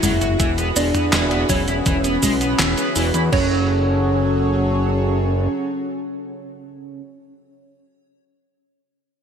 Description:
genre	synthwave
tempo	82 BPM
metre	4/4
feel	straight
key	F# minor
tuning	A4 = 440 Hz
part	soft octave-layered synth lead	melody	0.0-7.0 s	C#4 to E4	-23 LUFS	equal	chorus, phaser, ping-pong delay
part	soft synth bell	second line	0.0-7.7 s	C#5 to E5	-29 LUFS	right 2 dB	chorus, phaser, ping-pong delay
part	soft supersaw	sustained chords	0.0-7.0 s	E3 to C#5	-25 LUFS	right 1 dB	sidechain pumping
part	warbly dusty pluck	arpeggios	0.0-3.7 s	E3 to E4	-29 LUFS	left 2 dB	chorus, ping-pong delay
part	overdriven electric guitar	riff	0.0-3.7 s	E3 to F#4	-26 LUFS	right 2 dB	analog chorus, ping-pong delay
part	fat analog bass	bass	0.0-5.5 s	E1 to E2	-22 LUFS	equal	none
part	clean 12-bit digital drum machine	drums	0.0-3.3 s	cabasa, handclaps, hi-hat, snare drum, toms	-22 LUFS	right 1 dB	small room reverb, gated reverb
part	clean 12-bit digital drum machine	drums	0.4-3.5 s	crash cymbal, kick drum	-24 LUFS	equal	small room reverb
room	moderate lush hall reverb, RT60 2.7 s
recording	bright 1980s-style digital production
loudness	-16 LUFS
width	side -7 dB against mid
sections	0.0-3.3 A section; 3.3-6.3 B section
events	none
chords	0.4 Eadd9; 3.3 F#madd9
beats	| 0.40 1.13 1.86 2.59 | 3.33 4.06 4.79 5.52

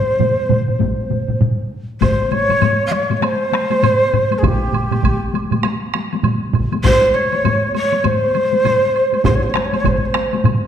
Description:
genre	japanese traditional, taiko drum ensemble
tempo	100 BPM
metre	4/4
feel	swing 60% on 16ths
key	unclear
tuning	A4 = 441 Hz
part	breathy mellow shakuhachi	melody	0.0-10.4 s	G4 to F5	-17 LUFS	right 1 dB	none
part	solo taiko drums	percussion	0.2-10.6 s	none	-20 LUFS	right 4 dB	none
part	taiko ensemble	percussion	0.2-10.6 s	none	-23 LUFS	left 4 dB	none
part	taiko ensemble	percussion	0.2-10.6 s	none	-21 LUFS	left 3 dB	none
part	taiko ensemble	percussion	0.8-10.0 s	none	-21 LUFS	equal	none
part	woodblock	percussion	2.0-10.6 s	none	-27 LUFS	right 5 dB	none
room	wet recital hall reverb, RT60 1.5 s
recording	dark, warm production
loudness	-14 LUFS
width	side -9 dB against mid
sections	0.0-2.0 A section; 2.0-10.7 B section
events	none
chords	none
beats	0.20 0.81 1.41 | 2.02 2.62 3.23 3.83 | 4.43 5.04 5.64 6.24 | 6.84 7.44 8.04 8.64 | 9.24 9.84 10.44

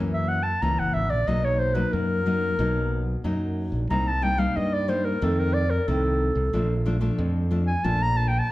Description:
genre	samba and choro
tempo	91 BPM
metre	4/4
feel	straight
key	unclear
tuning	A4 = 440 Hz
part	nylon-string guitar	accompaniment	0.0-8.5 s	F2 to D#4	-27 LUFS	left 2 dB	none
part	modern bright fingered electric bass	bass	0.0-8.4 s	Gb1 to G2	-26 LUFS	equal	none
part	warm clarinet	melody	0.1-8.5 s	A4 to Bb5	-26 LUFS	equal	none
room	wet large studio reverb, RT60 1.1 s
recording	heard from further back in the room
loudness	-22 LUFS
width	side -17 dB against mid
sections	0.0-8.5 A section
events	clarinet solo 0.0-8.5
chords	0.0 Gb7; 1.3 Bmaj7; 3.9 Cm7; 5.2 F7; 6.5 Bbmaj7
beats	0.62 | 1.28 1.93 2.59 3.25 | 3.90 4.56 5.22 5.87 | 6.53 7.19 7.84 8.50

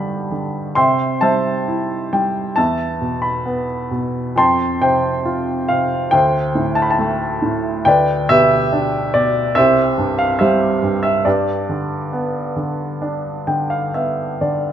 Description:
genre	classical, lyrical solo piano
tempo	69 BPM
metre	4/4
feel	uneven beats, rubato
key	unclear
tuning	A4 = 440 Hz
part	warm upright piano	solo	0.0-14.7 s	C2 to C6	-15 LUFS	equal	none
room	moderate scoring stage reverb, RT60 1.8 s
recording	none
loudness	-15 LUFS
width	side -9 dB against mid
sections	0.0-14.7 A section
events	upright piano fill 13.0-14.7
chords	0.0 G; 0.8 C; 2.6 E5; 4.4 Fadd9; 6.1 D5; 7.9 G/D; 9.6 C5; 11.3 G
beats	| 0.76 1.68 2.57 3.45 | 4.36 5.25 6.12 6.99 | 7.87 8.73 9.57 10.41 | 11.27 12.13 13.01 13.95

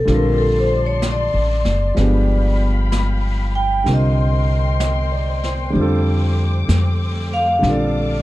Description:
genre	jazz ballad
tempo	64 BPM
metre	4/4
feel	swing 66% on 8ths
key	Bb major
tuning	A4 = 442 Hz
part	vibraphone with medium mallets	melody	0.0-8.2 s	A4 to G5	-21 LUFS	equal	none
part	warm grand piano	accompaniment	0.0-8.2 s	D3 to Eb5	-23 LUFS	right 1 dB	none
part	upright bass	bass	0.0-8.2 s	Gb1 to F2	-18 LUFS	equal	none
part	muted studio string section	sustained chords	0.1-8.2 s	A3 to D6	-29 LUFS	left 4 dB	none
part	jazz brush drum kit	drums	0.1-8.2 s	brushed snare drum, hi-hat, snare drum	-30 LUFS	equal	none
room	light reverb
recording	dark, warm production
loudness	-15 LUFS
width	side -16 dB against mid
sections	0.0-8.2 A section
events	vibraphone solo 0.0-8.2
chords	0.1 Bbmaj9; 2.0 G7b9; 3.9 Cm7; 5.7 F69; 7.6 Bbmaj7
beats	| 0.07 1.02 1.96 2.91 | 3.86 4.80 5.74 6.69 | 7.63

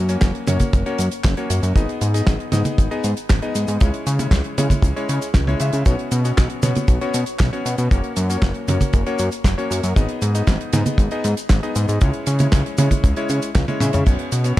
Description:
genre	italo disco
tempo	117 BPM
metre	4/4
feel	straight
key	B major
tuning	A4 = 442 Hz
part	bright electric grand piano	stabs	0.0-14.6 s	G#3 to E5	-25 LUFS	left 2 dB	shimmer reverb, ping-pong delay
part	fat analog bass	bass	0.0-14.6 s	F#1 to C#3	-21 LUFS	equal	none
part	damped 70s drum kit	drums	0.1-14.6 s	cabasa, crash cymbal, handclaps, hi-hat, snare drum, toms	-24 LUFS	right 2 dB	studio reverb
part	kick drum	drums	0.2-14.6 s	none	-16 LUFS	equal	studio reverb
room	studio ambience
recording	dark, warm production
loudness	-17 LUFS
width	side -15 dB against mid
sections	0.0-14.6 A section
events	drum fill 13.6-14.1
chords	0.0 F#; 1.8 G#m; 3.8 C#m; 5.9 Bsus2; 7.9 F#; 10.0 G#m; 12.0 C#m; 14.1 Bsus2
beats	0.22 0.73 1.25 | 1.76 2.27 2.78 3.30 | 3.81 4.32 4.83 5.35 | 5.86 6.37 6.89 7.40 | 7.91 8.42 8.94 9.45 | 9.96 10.48 10.99 11.50 | 12.01 12.53 13.04 13.55 | 14.06 14.58

